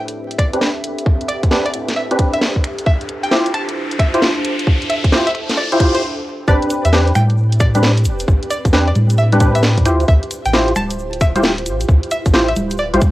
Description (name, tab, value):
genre	UK garage, two-step garage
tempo	133 BPM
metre	4/4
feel	swing 65% on 16ths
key	A minor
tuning	A4 = 440 Hz
part	string-like resonator pluck	melody	0.0-13.0 s	C5 to A5	-22 LUFS	equal	chorus, analog delay
part	ethereal airy pad	sustained chords	0.0-13.1 s	C4 to C5	-29 LUFS	right 1 dB	ensemble chorus, built-in reverb, sidechain pumping, cassette tape
part	soft dub sub bass	bass	0.0-13.0 s	D1 to A2	-17 LUFS	equal	tube saturation, sidechain pumping, high-pass filter
part	riser	sound effects	1.2-6.0 s	none	-27 LUFS	left 1 dB	none
part	warbly tape-like pad	texture	0.0-6.0 s	D4 to E5	-29 LUFS	right 1 dB	chorus, built-in reverb, sidechain pumping, cassette tape
part	garage drum kit	drums	0.1-13.1 s	congas, finger snaps, hi-hat, snare drum	-20 LUFS	equal	none
part	electronic kick drum	drums	0.4-13.1 s	none	-15 LUFS	equal	none
part	percussive organ stab	stabs	0.5-13.0 s	C4 to C5	-18 LUFS	equal	ensemble chorus, cassette tape, analog delay
part	egg shaker	percussion	6.5-13.1 s	none	-37 LUFS	left 3 dB	none
room	moderate studio reverb, RT60 0.6 s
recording	home recording on cassette, vinyl crackle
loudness	-13 LUFS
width	side -16 dB against mid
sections	0.0-6.5 A section; 6.5-13.1 B section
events	build-up 0.0-6.5; filter sweep on synth stab 0.0-6.5; filter sweep on ambient pad 0.0-6.5; riser 1.2-6.0; break 6.0-6.5; drop 6.5-13.1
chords	0.0 Am11; 2.6 Dm11; 6.5 Am11; 9.9 Dm11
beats	0.16 0.61 | 1.06 1.51 1.96 2.42 | 2.87 3.32 3.77 4.22 | 4.67 5.12 5.57 6.02 | 6.47 6.93 7.38 7.83 | 8.28 8.73 9.18 9.63 | 10.08 10.54 10.99 11.44 | 11.89 12.34 12.79